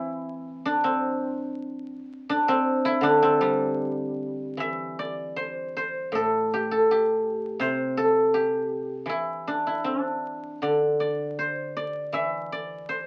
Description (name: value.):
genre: chinese traditional, Chinese solo plucked strings.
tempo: 75-86 BPM.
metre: 2/4.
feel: rubato.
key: unclear.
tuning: A4 = 443 Hz.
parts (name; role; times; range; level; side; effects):
guzheng; solo; 0.0-13.1 s; A2 to E5; -26 LUFS; equal; none.
room: moderate small room reverb, RT60 0.5 s.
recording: very old 78 rpm record, vinyl crackle.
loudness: -26 LUFS.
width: mono.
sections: 0.0-4.6 A section; 4.6-13.1 B section.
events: none.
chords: none.